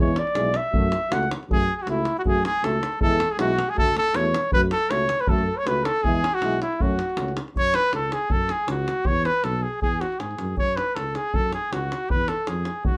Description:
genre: balkan folk, Balkan brass band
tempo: 158 BPM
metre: 2/4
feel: swing 55% on 16ths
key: F# minor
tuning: A4 = 441 Hz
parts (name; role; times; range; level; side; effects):
- mellow flugelhorn; second line; 0.0-13.0 s; E4 to F#5; -33 LUFS; equal; none
- clear euphonium; accompaniment; 0.0-7.3 s; C#4 to F#4; -34 LUFS; equal; none
- mellow trombone; accompaniment; 0.0-7.3 s; G#3 to A3; -34 LUFS; equal; none
- mellow tuba; bass; 0.0-13.0 s; B1 to G#2; -31 LUFS; equal; none
- davul; percussion; 0.1-12.9 s; none; -29 LUFS; equal; none
- warm cornet; melody; 1.5-13.0 s; E4 to C#5; -26 LUFS; equal; none
room: moderate studio reverb, RT60 0.5 s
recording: none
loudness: -23 LUFS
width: mono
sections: 0.0-1.5 A section; 1.5-7.6 B section; 7.6-13.0 C section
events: flugelhorn solo 0.0-1.5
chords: 0.0 E; 0.7 F#m; 3.0 E; 3.8 D; 4.5 F#m; 6.0 E; 6.8 F#m; 7.6 F#5; 9.1 E; 10.6 F#5; 12.1 E

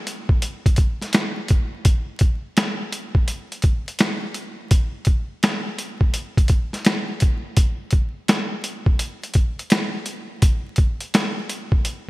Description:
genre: hip hop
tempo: 84 BPM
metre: 4/4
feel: swing 63% on 16ths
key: none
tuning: none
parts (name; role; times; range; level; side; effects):
- boom bap sampler-style drum kit; drums; 0.1-12.1 s; hi-hat, kick drum, snare drum; -18 LUFS; equal; gated reverb
room: light reverb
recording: bright 1980s-style digital production, vinyl crackle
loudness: -19 LUFS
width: side -20 dB against mid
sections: 0.0-12.1 A section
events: none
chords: none

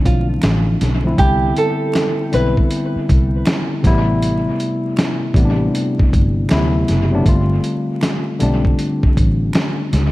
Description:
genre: lo-fi hip hop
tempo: 79 BPM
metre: 4/4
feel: swing 64% on 16ths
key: D dorian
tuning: A4 = 440 Hz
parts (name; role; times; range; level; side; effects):
- tine electric piano; accompaniment; 0.0-10.1 s; C3 to F4; -19 LUFS; left 1 dB; overdrive, low-pass filter
- nylon-string guitar; melody; 0.1-2.5 s; F4 to B4; -21 LUFS; right 2 dB; low-pass filter, dub echo
- vintage muted fingered electric bass; bass; 0.1-10.1 s; F#1 to D2; -17 LUFS; equal; none
- dusty soul sampler-style drum kit; drums; 0.1-10.1 s; hi-hat, kick drum, snare drum; -18 LUFS; equal; dub echo
- finger snaps; percussion; 0.4-9.8 s; none; -36 LUFS; right 4 dB; none
room: light reverb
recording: echo-heavy mix, vinyl crackle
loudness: -14 LUFS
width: side -18 dB against mid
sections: 0.0-10.1 A section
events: none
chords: 0.0 Dm9; 1.2 Cmaj9; 3.8 Am9; 6.5 D13; 7.3 G9sus4

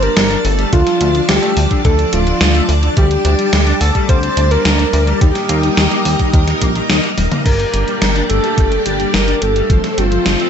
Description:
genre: synthwave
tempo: 107 BPM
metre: 4/4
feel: straight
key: G minor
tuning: A4 = 441 Hz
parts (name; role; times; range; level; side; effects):
- soft octave-layered synth lead; melody; 0.0-10.5 s; F4 to C5; -18 LUFS; equal; chorus, tape echo
- soft synth bell; second line; 0.0-6.9 s; F4 to C5; -25 LUFS; right 1 dB; none
- string machine, full ensemble; sustained chords; 0.0-10.5 s; F3 to A5; -20 LUFS; equal; ensemble chorus
- electric guitar at the edge of break-up; riff; 0.0-10.5 s; D3 to Eb4; -24 LUFS; left 4 dB; ensemble chorus, tape echo
- chorused synth bass; bass; 0.0-10.4 s; D1 to Eb2; -16 LUFS; equal; tube saturation
- gated 80s digital drum machine; drums; 0.0-10.5 s; crash cymbal, hi-hat, snare drum, toms; -18 LUFS; equal; gated reverb, gated reverb snare
- electronic kick drum; drums; 0.7-9.8 s; none; -13 LUFS; equal; none
room: light reverb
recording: nothing above 8.0 kHz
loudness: -11 LUFS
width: side -8 dB against mid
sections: 0.0-7.5 A section; 7.5-10.5 B section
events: drum fill 7.2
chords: 0.0 Gsus2; 0.7 Dm; 3.0 Gsus2/D; 5.2 Eb; 7.5 Gm; 9.7 F/G

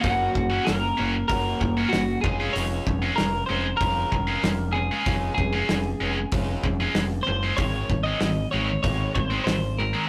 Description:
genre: indie rock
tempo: 95 BPM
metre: 4/4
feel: straight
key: Db major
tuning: A4 = 441 Hz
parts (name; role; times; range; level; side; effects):
- twelve-string electric guitar; melody; 0.0-10.1 s; Gb4 to Eb5; -30 LUFS; equal; spring reverb
- overdriven semi-hollow guitar; riff; 0.0-10.1 s; Eb3 to Gb4; -33 LUFS; equal; none
- scooped high-gain guitar; riff; 0.0-10.1 s; Eb3 to Gb4; -31 LUFS; equal; distortion
- growling fingered electric bass; bass; 0.0-9.9 s; F1 to Ab1; -31 LUFS; equal; overdrive
- loose indie drum kit; drums; 0.0-9.6 s; hi-hat, kick drum, snare drum; -30 LUFS; equal; none
room: moderate studio reverb, RT60 0.5 s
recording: rough rehearsal-room recording, tube saturation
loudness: -24 LUFS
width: mono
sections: 0.0-10.1 A section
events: none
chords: 0.0 Gb; 2.2 Db/F; 7.6 Ab

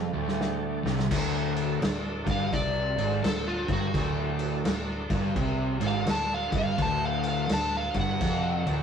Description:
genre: blues rock power trio and southern rock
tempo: 84 BPM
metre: 4/4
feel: swing 63% on 8ths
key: D mixolydian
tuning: A4 = 440 Hz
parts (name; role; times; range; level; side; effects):
- crunchy overdriven guitar; riff; 0.0-8.8 s; D2 to C3; -29 LUFS; equal; spring reverb
- vintage muted fingered electric bass; bass; 0.0-8.8 s; D1 to C2; -36 LUFS; equal; none
- overdriven tonewheel organ; sustained chords; 0.1-8.8 s; D4 to D5; -39 LUFS; right 3 dB; slow rotary speaker, chorus vibrato
- vintage drum kit; drums; 0.3-8.8 s; crash cymbal, kick drum, snare drum; -30 LUFS; equal; none
- overdriven slide guitar; melody; 2.3-8.8 s; F4 to A5; -30 LUFS; left 1 dB; none
room: moderate studio reverb, RT60 0.7 s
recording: rough rehearsal-room recording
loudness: -25 LUFS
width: side -7 dB against mid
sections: 0.0-1.1 A section; 1.1-8.8 B section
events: drum fill 0.0-1.1; electric slide guitar solo 1.1-8.8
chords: 0.0 D

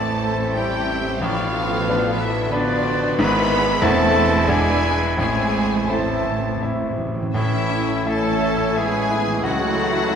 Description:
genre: classical, romantic movement for piano and orchestra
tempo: 79-94 BPM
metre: 3/4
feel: rubato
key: A minor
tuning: A4 = 441 Hz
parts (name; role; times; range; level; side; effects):
- clear concert grand piano; melody; 0.0-10.2 s; E1 to E6; -23 LUFS; left 1 dB; none
- warm studio violin section; melody; 0.0-10.2 s; D5 to B5; -29 LUFS; left 2 dB; none
- bright clarinet; second line; 0.0-10.2 s; D4 to A4; -31 LUFS; left 2 dB; none
- mellow large flute ensemble; second line; 0.0-10.2 s; A4 to B5; -30 LUFS; equal; none
- rich symphonic violin section; second line; 0.0-10.2 s; D4 to B4; -30 LUFS; left 5 dB; none
- warm oboe; second line; 0.0-10.2 s; E4 to B5; -29 LUFS; equal; none
- mellow bassoon; accompaniment; 0.0-10.2 s; A3 to D4; -32 LUFS; right 1 dB; none
- rich studio viola section; accompaniment; 0.0-10.2 s; A3 to E5; -32 LUFS; right 1 dB; none
- mellow French horn section; sustained chords; 0.0-10.2 s; E3 to E4; -29 LUFS; left 4 dB; none
- warm trombone section; sustained chords; 0.0-10.2 s; B2 to C#4; -32 LUFS; right 3 dB; none
- mellow trumpet; stabs; 0.0-10.2 s; E4 to E5; -30 LUFS; right 2 dB; none
- clear symphonic double bass section; bass; 0.0-10.2 s; G#1 to E2; -29 LUFS; right 3 dB; none
- rich symphonic cello section; bass; 0.0-10.2 s; A2 to B3; -28 LUFS; right 4 dB; none
- timpani; percussion; 0.0-2.1, 5.2-8.4 s; A2; -29 LUFS; right 1 dB; none
room: wet concert hall reverb, RT60 2.3 s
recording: none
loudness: -18 LUFS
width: side -7 dB against mid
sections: 0.0-7.4 A section; 7.4-10.2 B section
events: timpani fill 5.2-7.4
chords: 0.0 Am; 1.2 Bm7b5/A; 3.2 E/G#; 3.8 Am/E; 4.5 E7; 5.2 Am; 7.4 A; 9.4 A/C#

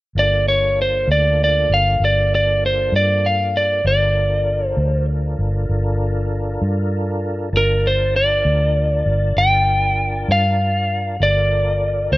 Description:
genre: slow blues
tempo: 65 BPM (dotted quarters)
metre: 12/8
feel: straight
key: G minor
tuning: A4 = 439 Hz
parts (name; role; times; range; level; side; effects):
- lightly driven lead guitar; melody; 0.2-12.2 s; Bb4 to G5; -17 LUFS; equal; none
- tonewheel organ; sustained chords; 0.2-12.2 s; Bb3 to A5; -28 LUFS; equal; chorus vibrato, slow rotary speaker
- vintage muted fingered electric bass; bass; 0.2-12.2 s; G1 to G2; -19 LUFS; equal; none
room: digital ambience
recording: rough home demo mix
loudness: -15 LUFS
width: side -18 dB against mid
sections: 0.2-12.2 A section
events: none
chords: 0.2 Gm7

